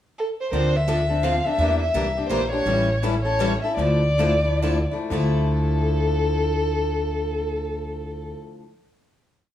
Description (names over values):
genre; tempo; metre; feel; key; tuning
acoustic string swing (jazz manouche); 118-168 BPM; 3/4; swing 61% on 8ths; D minor; A4 = 440 Hz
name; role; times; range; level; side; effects
warm violin; melody; 0.2-8.3 s; A4 to F5; -24 LUFS; equal; none
picked steel-string acoustic guitar; accompaniment; 0.5-8.6 s; D3 to A4; -27 LUFS; left 5 dB; none
picked steel-string acoustic guitar; accompaniment; 0.5-8.6 s; D3 to Bb4; -32 LUFS; right 3 dB; none
upright bass; bass; 0.5-8.3 s; A1 to E2; -24 LUFS; equal; none
room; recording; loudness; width
light reverb; studio reverb; -20 LUFS; side -11 dB against mid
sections
0.0-0.5 pickup bar; 0.5-5.1 A section; 5.1-8.2 final chord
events
slowing down 2.7-5.1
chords
0.0 N.C.; 0.5 Dm7; 1.6 Em7b5; 2.7 A7; 3.8 Dmadd9